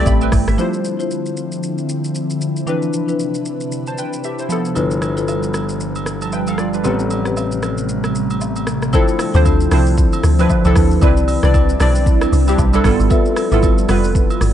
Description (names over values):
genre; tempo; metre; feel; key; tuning
amapiano; 115 BPM; 4/4; swing 58% on 16ths; D dorian; A4 = 442 Hz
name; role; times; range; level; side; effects
glassy digital keys; accompaniment; 0.0-14.5 s; E3 to B5; -20 LUFS; right 1 dB; chorus
glassy FM pad; sustained chords; 0.0-14.5 s; C3 to B4; -23 LUFS; right 1 dB; ensemble chorus, built-in reverb, sidechain pumping
deep log drum bass; bass; 0.0-0.6, 9.3-14.5 s; F1 to D2; -15 LUFS; equal; none
deep house drum kit; drums; 0.1-14.5 s; hi-hat, kick drum, rim click, shaker; -19 LUFS; equal; none
woodblock and agogo bells; percussion; 0.1-0.3, 4.8-14.4 s; none; -30 LUFS; right 6 dB; none
marimba with soft mallets; stabs; 0.6-13.6 s; C4 to E5; -24 LUFS; left 6 dB; tape echo
warm concert grand piano; bass; 4.8-8.9 s; G1 to A1; -24 LUFS; left 1 dB; none
room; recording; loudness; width
digital ambience; dark, warm production, nothing above 10.7 kHz; -14 LUFS; side -10 dB against mid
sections
0.6-8.9 A section; 8.9-14.5 B section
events
drop 8.9-14.5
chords
0.0 Am9; 0.6 Dm9; 2.7 Cmaj9; 4.5 G13; 6.8 Am9; 8.9 Dm9; 11.0 Cmaj9; 12.8 G13